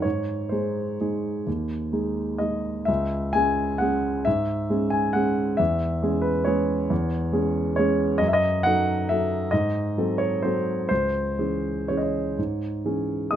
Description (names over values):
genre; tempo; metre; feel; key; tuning
classical, piano waltz; 120-144 BPM; 3/4; rubato; C# minor; A4 = 440 Hz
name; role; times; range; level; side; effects
warm grand piano; solo; 0.0-13.4 s; C#2 to D#6; -22 LUFS; equal; none
room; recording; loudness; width
light reverb; close, detailed microphones; -22 LUFS; side -10 dB against mid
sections
0.0-13.4 A section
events
none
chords
0.0 G#; 2.9 C#m; 5.6 C#m/E; 8.2 D#dim/F#; 9.5 G#7b9; 10.9 C#m